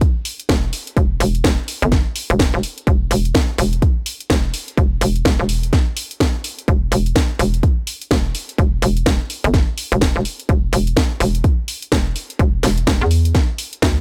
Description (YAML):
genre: bass house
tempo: 126 BPM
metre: 4/4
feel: swing 60% on 16ths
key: E minor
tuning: A4 = 440 Hz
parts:
  - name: electronic kick drum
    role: drums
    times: 0.0-13.9 s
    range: none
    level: -19 LUFS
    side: equal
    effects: small room ambience
  - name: house drum kit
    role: drums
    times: 0.0-13.9 s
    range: hi-hat, snare drum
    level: -24 LUFS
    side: equal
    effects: small room ambience
  - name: hollow knocking FM bass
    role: bass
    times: 0.5-14.0 s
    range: E1 to E2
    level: -20 LUFS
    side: equal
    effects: tube saturation, sidechain pumping
room: little or no reverb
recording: none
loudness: -18 LUFS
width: mono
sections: 0.0-14.0 A section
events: none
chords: none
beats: 0.01 0.49 | 0.97 1.44 1.92 2.39 | 2.87 3.35 3.82 4.30 | 4.78 5.25 5.73 6.20 | 6.68 7.16 7.63 8.11 | 8.59 9.06 9.54 10.01 | 10.49 10.97 11.44 11.92 | 12.39 12.87 13.35 13.82